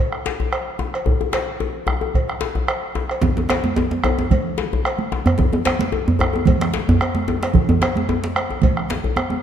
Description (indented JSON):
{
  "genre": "west african traditional, West African drum ensemble",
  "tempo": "111 BPM",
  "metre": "4/4",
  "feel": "swing 54% on 16ths",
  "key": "none",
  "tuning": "none",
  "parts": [
    { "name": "bombo", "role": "percussion", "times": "0.1-9.3 s", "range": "none", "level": "-23 LUFS", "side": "right 1 dB", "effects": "none" },
    { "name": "djembe", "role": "percussion", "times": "0.3-9.2 s", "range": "none", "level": "-24 LUFS", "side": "left 4 dB", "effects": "none" },
    { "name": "cowbell", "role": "percussion", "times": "0.5-9.3 s", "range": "none", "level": "-28 LUFS", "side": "right 1 dB", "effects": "none" },
    { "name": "congas", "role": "percussion", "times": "3.2-9.4 s", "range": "none", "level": "-24 LUFS", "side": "right 6 dB", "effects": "none" },
    { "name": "djembe", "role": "percussion", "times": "3.2-9.4 s", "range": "none", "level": "-20 LUFS", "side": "right 1 dB", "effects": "none" }
  ],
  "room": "moderate scoring stage reverb, RT60 1.8 s",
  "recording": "dark, warm production",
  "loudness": "-17 LUFS",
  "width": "side -9 dB against mid",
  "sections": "0.0-3.2 A section; 3.2-9.4 B section",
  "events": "none",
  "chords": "none"
}